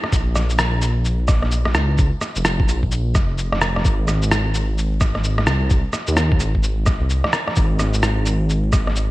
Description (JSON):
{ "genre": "future garage", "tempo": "129 BPM", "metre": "4/4", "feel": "swing 62% on 16ths", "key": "Bb minor", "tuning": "A4 = 444 Hz", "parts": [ { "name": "electronic rim click, shaker and cabasa", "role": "drums", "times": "0.0-9.1 s", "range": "none", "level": "-22 LUFS", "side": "equal", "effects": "vintage 12-bit sampler grit, gated reverb" }, { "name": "dark detuned saw bass", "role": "bass", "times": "0.1-9.1 s", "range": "F1 to Eb2", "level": "-19 LUFS", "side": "equal", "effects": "sidechain pumping" }, { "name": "electronic kick drum", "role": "drums", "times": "0.1-8.8 s", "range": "none", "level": "-18 LUFS", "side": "equal", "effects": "vintage 12-bit sampler grit" } ], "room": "little or no reverb", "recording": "bright 1980s-style digital production, vinyl crackle", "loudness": "-16 LUFS", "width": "side -18 dB against mid", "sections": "0.0-9.1 A section", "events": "none", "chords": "none" }